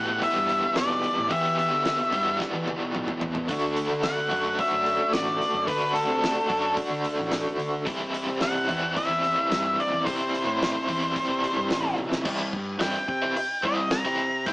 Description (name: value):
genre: psychedelic rock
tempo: 110 BPM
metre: 4/4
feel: straight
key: C lydian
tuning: A4 = 443 Hz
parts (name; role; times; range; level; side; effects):
- octave-fuzz lead guitar; melody; 0.0-14.5 s; A4 to Bb5; -25 LUFS; equal; distortion, slapback echo
- overdriven electric guitar; riff; 0.0-14.5 s; E2 to G4; -28 LUFS; equal; tremolo
- fuzz fingered electric bass; bass; 0.0-14.5 s; A1 to E3; -33 LUFS; equal; overdrive
- damped 70s drum kit; drums; 0.2-14.5 s; crash cymbal, hi-hat, kick drum, snare drum, toms; -32 LUFS; equal; none
room: moderate stone room reverb, RT60 1.1 s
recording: rough rehearsal-room recording, small speaker sound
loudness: -23 LUFS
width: side -22 dB against mid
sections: 0.0-12.3 A section; 12.3-14.5 B section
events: drum fill 2.4-3.5, 12.0; lead electric guitar solo 12.3-14.5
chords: 0.0 Em; 3.5 D; 7.9 C